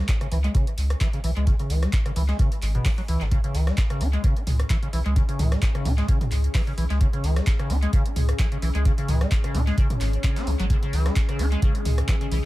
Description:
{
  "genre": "acid house",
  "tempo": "130 BPM",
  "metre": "4/4",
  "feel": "swing 54% on 16ths",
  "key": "C# minor pentatonic",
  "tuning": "A4 = 440 Hz",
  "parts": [
    { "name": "liquid acid bass", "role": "riff", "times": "0.0-12.4 s", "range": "B2 to E4", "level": "-30 LUFS", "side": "equal", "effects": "overdrive, lush chorus, cassette tape, sidechain pumping, dub echo" },
    { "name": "deep dark ambient pad", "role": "texture", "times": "0.3-12.5 s", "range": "C#4 to G#5", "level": "-38 LUFS", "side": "left 2 dB", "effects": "chorus, built-in reverb, sidechain pumping" },
    { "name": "breakbeat sampler-style drum kit", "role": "drums", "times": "0.1-12.4 s", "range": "hi-hat, snare drum", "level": "-44 LUFS", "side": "equal", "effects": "none" },
    { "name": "electronic kick drum", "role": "drums", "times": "0.1-12.2 s", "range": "none", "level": "-23 LUFS", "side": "equal", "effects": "overdrive" },
    { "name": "punchy analog drum machine", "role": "drums", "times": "0.1-12.4 s", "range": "handclaps, hi-hat, rim click, toms", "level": "-32 LUFS", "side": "equal", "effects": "dub echo" },
    { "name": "saturated sub bass", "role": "bass", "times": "0.3-12.4 s", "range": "G#1 to C#2", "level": "-22 LUFS", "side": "equal", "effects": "tube saturation, sidechain pumping" },
    { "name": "swell", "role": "sound effects", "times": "9.9-10.7 s", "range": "none", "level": "-34 LUFS", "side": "left 4 dB", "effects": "none" },
    { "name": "lush unison pad", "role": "sustained chords", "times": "11.1-12.5 s", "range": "C#3 to G#4", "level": "-35 LUFS", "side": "right 2 dB", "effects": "chorus, phaser, sidechain pumping" }
  ],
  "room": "little or no reverb",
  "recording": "echo-heavy mix",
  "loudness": "-20 LUFS",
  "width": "side -17 dB against mid",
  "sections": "0.0-12.5 A section",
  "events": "fade-in on ambient pad 0.0-12.5; filter sweep on acid bass 0.0-12.5; swell 9.9-10.7",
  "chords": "0.0 C#5",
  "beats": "0.08 0.55 1.01 | 1.47 1.93 2.39 2.85 | 3.31 3.78 4.24 4.70 | 5.16 5.62 6.08 6.55 | 7.01 7.47 7.93 8.39 | 8.85 9.31 9.78 10.24 | 10.70 11.16 11.62 12.08"
}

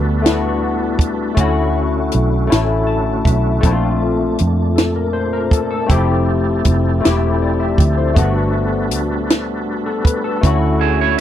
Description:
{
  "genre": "slow six-eight R&B",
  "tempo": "53 BPM (dotted quarters)",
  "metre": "6/8",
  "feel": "straight",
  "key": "G lydian",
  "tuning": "A4 = 439 Hz",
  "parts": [
    { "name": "barky tine electric piano", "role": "accompaniment", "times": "0.0-11.2 s", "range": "A3 to A5", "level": "-18 LUFS", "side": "left 4 dB", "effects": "overdrive, ensemble chorus" },
    { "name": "tonewheel organ", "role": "sustained chords", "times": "0.0-11.2 s", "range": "Bb2 to B4", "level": "-26 LUFS", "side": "right 5 dB", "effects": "chorus vibrato, fast rotary speaker" },
    { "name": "vintage muted fingered electric bass", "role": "bass", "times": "0.0-11.2 s", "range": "E1 to F2", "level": "-18 LUFS", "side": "right 1 dB", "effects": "none" },
    { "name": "compact cocktail drum kit", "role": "drums", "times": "0.3-11.2 s", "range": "hi-hat, kick drum, snare drum", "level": "-14 LUFS", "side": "right 1 dB", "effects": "none" },
    { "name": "electric guitar through a small old amp", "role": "second line", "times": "10.8-11.2 s", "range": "E4 to E5", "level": "-16 LUFS", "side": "right 14 dB", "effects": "none" }
  ],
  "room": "little or no reverb",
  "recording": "dry, close 1970s-style studio recording",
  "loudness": "-14 LUFS",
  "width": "side -11 dB against mid",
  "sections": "0.0-11.2 A section",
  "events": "tine electric piano fill 2.5-3.6",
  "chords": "0.0 Gmaj9; 1.4 Dmaj9; 3.6 Bbmaj9; 5.9 Fmaj9; 8.2 Gmaj9; 10.4 Dmaj9",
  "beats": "0.24 | 1.37 2.50 | 3.64 4.77 | 5.90 7.03 | 8.17 9.30 | 10.43"
}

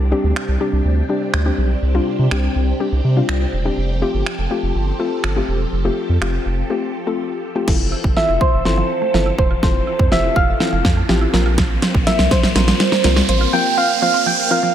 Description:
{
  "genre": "dance-pop",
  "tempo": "123 BPM",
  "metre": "4/4",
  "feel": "straight",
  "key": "F major",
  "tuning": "A4 = 441 Hz",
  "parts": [
    { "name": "phased string machine", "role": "sustained chords", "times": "0.0-14.7 s", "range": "C3 to A4", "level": "-27 LUFS", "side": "equal", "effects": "ensemble chorus, phaser, sidechain pumping" },
    { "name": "round analog bass", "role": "bass", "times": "0.0-13.5 s", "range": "E1 to C3", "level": "-18 LUFS", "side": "right 1 dB", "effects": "sidechain pumping" },
    { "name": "soft round pluck", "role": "accompaniment", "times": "0.1-14.7 s", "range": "G3 to C5", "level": "-23 LUFS", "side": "left 4 dB", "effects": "chorus, sidechain pumping, slapback echo" },
    { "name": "pop drum kit", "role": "drums", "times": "0.4-13.4 s", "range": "crash cymbal, finger snaps, hi-hat, kick drum, snare drum", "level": "-19 LUFS", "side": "right 1 dB", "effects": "none" },
    { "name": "mallet-like synth pluck", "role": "arpeggios", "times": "7.7-14.7 s", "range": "F3 to F4", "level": "-27 LUFS", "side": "right 7 dB", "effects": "chorus, sidechain pumping, digital delay, slapback echo" },
    { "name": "riser", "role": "sound effects", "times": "9.6-14.5 s", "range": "none", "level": "-24 LUFS", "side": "right 4 dB", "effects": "none" },
    { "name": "soft struck synth lead", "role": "melody", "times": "8.2-14.7 s", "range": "C5 to G5", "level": "-18 LUFS", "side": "right 2 dB", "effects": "chorus, phaser, digital delay, slapback echo" }
  ],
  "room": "moderate lush hall reverb, RT60 1.7 s, digital ambience",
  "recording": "big arena sound",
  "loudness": "-15 LUFS",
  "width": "side -10 dB against mid",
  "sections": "0.0-7.7 A section; 7.7-14.7 B section",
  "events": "break 6.7-7.7; build-up 7.7-14.7; drum fill 7.7-13.5; riser 9.6-14.7",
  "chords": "0.0 Csus2; 3.8 Fadd9; 11.3 Bbsus2",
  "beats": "0.36 0.85 1.34 | 1.82 2.31 2.80 3.29 | 3.78 4.26 4.75 5.24 | 5.73 6.21 6.70 7.19 | 7.68 8.17 8.65 9.14 | 9.63 10.12 10.61 11.09 | 11.58 12.07 12.56 13.04 | 13.53 14.02 14.51"
}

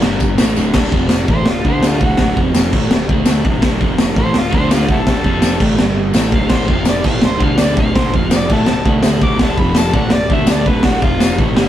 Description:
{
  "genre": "garage rock duo or trio",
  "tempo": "166 BPM",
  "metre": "4/4",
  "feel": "straight",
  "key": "unclear",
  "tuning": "A4 = 438 Hz",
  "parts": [
    { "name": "crunchy overdriven guitar", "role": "riff", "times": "0.0-11.7 s", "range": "D2 to D4", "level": "-18 LUFS", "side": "equal", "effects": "none" },
    { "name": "growling picked electric bass", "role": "bass", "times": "0.0-11.7 s", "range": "D1 to D2", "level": "-22 LUFS", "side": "equal", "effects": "overdrive, tube saturation" },
    { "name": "raw garage drum kit", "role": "drums", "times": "0.0-11.7 s", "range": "crash cymbal, hi-hat, kick drum, snare drum", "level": "-14 LUFS", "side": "equal", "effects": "none" },
    { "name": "tambourine", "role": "percussion", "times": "0.0-11.3 s", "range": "none", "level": "-30 LUFS", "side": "left 6 dB", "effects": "none" },
    { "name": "overdriven harmonica", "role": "melody", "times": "1.3-11.4 s", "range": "E4 to D6", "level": "-21 LUFS", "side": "equal", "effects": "none" }
  ],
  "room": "light reverb",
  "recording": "rough rehearsal-room recording",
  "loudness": "-12 LUFS",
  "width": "side -12 dB against mid",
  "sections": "0.8-11.7 A section",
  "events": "harmonica solo 0.8-11.7",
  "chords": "0.0 G5; 0.4 D5; 0.9 F5; 1.3 D; 2.4 F5; 2.7 D5; 3.8 F5; 4.2 D5; 5.2 F5; 5.6 A5; 5.8 G5; 6.2 D5; 6.7 F5; 7.1 D5; 8.1 F5; 8.5 D5; 9.6 F5; 9.9 D5; 11.0 F5; 11.4 A5",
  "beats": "0.04 0.39 | 0.75 1.11 1.47 1.83 | 2.19 2.55 2.91 3.27 | 3.63 3.99 4.35 4.71 | 5.07 5.43 5.79 6.15 | 6.51 6.87 7.23 7.59 | 7.96 8.32 8.68 9.04 | 9.40 9.76 10.12 10.48 | 10.84 11.20 11.56"
}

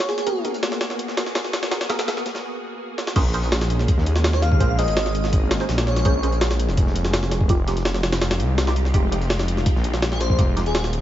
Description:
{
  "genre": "drum and bass, jungle",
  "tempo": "166 BPM",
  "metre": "4/4",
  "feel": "straight",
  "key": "Bb minor",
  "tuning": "A4 = 440 Hz",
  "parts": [
    { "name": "soft string machine", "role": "sustained chords", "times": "0.0-11.0 s", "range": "Ab3 to Ab4", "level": "-30 LUFS", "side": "left 1 dB", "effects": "phaser, ensemble chorus" },
    { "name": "jungle sampler-style drum kit", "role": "drums", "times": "0.0-11.0 s", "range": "crash cymbal, hi-hat, kick drum, snare drum", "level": "-22 LUFS", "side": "equal", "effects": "high-pass filter on hats, studio reverb, high-pass filter on kick, high-pass filter on snare, high-pass filter on cymbals" },
    { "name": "airy dreamy lead", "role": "melody", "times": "0.1-0.4, 4.3-6.4, 10.1-10.8 s", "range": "Ab4 to F5", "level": "-28 LUFS", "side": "equal", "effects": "chorus, dub echo" },
    { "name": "crunchy breakbeat drum kit", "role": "drums", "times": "0.1-11.0 s", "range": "hi-hat, shaker, snare drum", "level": "-38 LUFS", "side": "equal", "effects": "none" },
    { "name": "filtered dub chord stab", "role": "stabs", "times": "0.3-10.6 s", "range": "Ab3 to C5", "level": "-31 LUFS", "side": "right 3 dB", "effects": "phaser, ensemble chorus, dub echo" },
    { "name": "detuned saw bass", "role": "bass", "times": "3.2-11.0 s", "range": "Eb1 to Eb2", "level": "-22 LUFS", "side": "equal", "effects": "none" }
  ],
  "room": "light reverb, small room ambience",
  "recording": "vinyl crackle, nothing above 7.7 kHz",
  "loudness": "-19 LUFS",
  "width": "side -12 dB against mid",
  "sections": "0.0-3.2 A section; 3.2-11.0 B section",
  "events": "build-up 0.0-3.2; filter sweep on string machine 0.0-3.2; filter sweep on synth stab 0.0-3.2; filter sweep on digital synth lead 0.0-3.2; break 2.4-3.2; drum fill 3.0; drop 3.2-11.0",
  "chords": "0.0 Abm9; 3.2 Bbm9; 7.5 Fm9",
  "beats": "| 0.27 0.63 0.99 1.35 | 1.71 2.08 2.44 2.80 | 3.16 3.52 3.88 4.24 | 4.61 4.97 5.33 5.69 | 6.05 6.41 6.77 7.13 | 7.50 7.86 8.22 8.58 | 8.94 9.30 9.66 10.03 | 10.39 10.75"
}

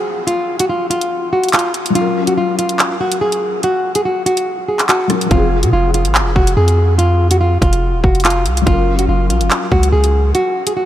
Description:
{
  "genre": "hip hop, drill",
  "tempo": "143 BPM",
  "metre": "4/4",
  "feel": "half-time",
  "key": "F phrygian",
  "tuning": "A4 = 439 Hz",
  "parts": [
    { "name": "nylon-string guitar", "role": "melody", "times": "0.0-10.9 s", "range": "F4 to Ab4", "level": "-16 LUFS", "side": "equal", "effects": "analog delay" },
    { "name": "felt-muted upright piano", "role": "accompaniment", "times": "0.0-10.9 s", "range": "F3 to Bb4", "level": "-23 LUFS", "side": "left 4 dB", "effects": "ensemble chorus" },
    { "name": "drill drum kit", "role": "drums", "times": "0.3-10.8 s", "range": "handclaps, hi-hat, kick drum, rim click", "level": "-18 LUFS", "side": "equal", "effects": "overdrive" },
    { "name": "long sustained 808-style bass", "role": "bass", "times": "5.3-10.3 s", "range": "Eb1 to C3", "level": "-14 LUFS", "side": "equal", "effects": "none" }
  ],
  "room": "moderate huge ambient reverb, RT60 7.2 s",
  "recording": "dreamy mix soaked in reverb",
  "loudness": "-12 LUFS",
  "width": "side -12 dB against mid",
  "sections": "0.0-10.9 A section",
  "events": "break 0.0-5.3, 10.3-10.9",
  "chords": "0.0 Fm; 2.0 Gb; 5.3 Fm; 8.7 Gb",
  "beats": "| 0.28 0.69 1.11 1.53 | 1.95 2.37 2.79 3.21 | 3.63 4.05 4.47 4.89 | 5.31 5.73 6.15 6.57 | 6.99 7.41 7.83 8.25 | 8.67 9.09 9.51 9.93 | 10.35 10.77"
}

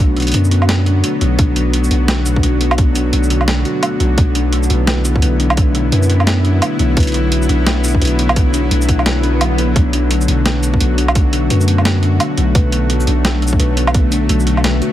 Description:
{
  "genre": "half-time drum and bass",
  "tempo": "172 BPM",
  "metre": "4/4",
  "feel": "swing 60% on 16ths, half-time",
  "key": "B minor",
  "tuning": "A4 = 440 Hz",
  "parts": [
    { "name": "bowed-like drone", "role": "sustained chords", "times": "0.0-14.9 s", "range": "D3 to F#4", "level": "-20 LUFS", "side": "left 2 dB", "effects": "built-in reverb, sidechain pumping" },
    { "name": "kalimba", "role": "arpeggios", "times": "0.0-14.9 s", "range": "B2 to B4", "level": "-20 LUFS", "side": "equal", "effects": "vintage 12-bit sampler grit, digital delay" },
    { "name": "long sustained 808-style bass", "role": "bass", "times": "0.0-14.8 s", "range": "B1 to F#2", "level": "-15 LUFS", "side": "equal", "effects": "none" },
    { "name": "boom bap sampler-style drum kit", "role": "drums", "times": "0.2-14.9 s", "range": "hi-hat, shaker, snare drum, woodblock", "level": "-19 LUFS", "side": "right 1 dB", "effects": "overdrive" },
    { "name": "electronic kick drum", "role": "drums", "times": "1.4-14.0 s", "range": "none", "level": "-14 LUFS", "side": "equal", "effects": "overdrive" },
    { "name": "swell", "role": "sound effects", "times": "9.2-9.8 s", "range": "none", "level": "-26 LUFS", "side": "equal", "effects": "none" }
  ],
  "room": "light reverb, digital ambience",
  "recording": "heavily compressed radio sound",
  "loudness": "-12 LUFS",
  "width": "side -12 dB against mid",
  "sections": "0.0-14.9 A section",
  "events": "swell 9.2-9.8",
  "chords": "0.0 Bm",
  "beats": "0.34 0.69 1.04 | 1.39 1.74 2.08 2.43 | 2.78 3.13 3.48 3.83 | 4.18 4.53 4.88 5.22 | 5.57 5.92 6.27 6.62 | 6.97 7.32 7.67 8.02 | 8.36 8.71 9.06 9.41 | 9.76 10.11 10.46 10.80 | 11.15 11.50 11.85 12.20 | 12.55 12.90 13.25 13.60 | 13.95 14.29 14.64"
}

